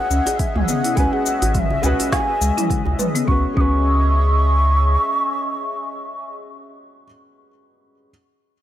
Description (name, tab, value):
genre	organic downtempo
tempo	104 BPM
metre	4/4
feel	swing 56% on 16ths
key	C# minor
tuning	A4 = 440 Hz
part	mellow bansuri	melody	0.0-6.3 s	E5 to D#6	-22 LUFS	equal	ping-pong delay
part	felt-muted upright piano	accompaniment	0.0-8.1 s	G#3 to B4	-28 LUFS	equal	sidechain pumping, ping-pong delay
part	warm analog pad	sustained chords	0.0-6.4 s	C#4 to E5	-29 LUFS	left 1 dB	chorus, sidechain pumping
part	folk marimba with medium mallets	arpeggios	0.1-3.7 s	G#3 to B4	-25 LUFS	left 2 dB	ping-pong delay
part	warm sub bass	bass	0.1-5.0 s	G#1 to C#2	-18 LUFS	equal	sidechain pumping
part	organic electronic drum kit	drums	0.1-3.3 s	hi-hat, shaker, snare drum, toms	-24 LUFS	left 1 dB	overdrive
part	djembe	percussion	0.3-3.0 s	none	-30 LUFS	right 1 dB	none
part	electronic kick drum	drums	0.4-3.8 s	none	-22 LUFS	equal	overdrive
room	light reverb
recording	none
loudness	-16 LUFS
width	side -12 dB against mid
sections	0.0-3.3 A section; 3.3-5.6 B section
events	none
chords	0.0 C#m7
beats	0.40 | 0.97 1.55 2.13 2.70 | 3.28 3.86 4.43 5.01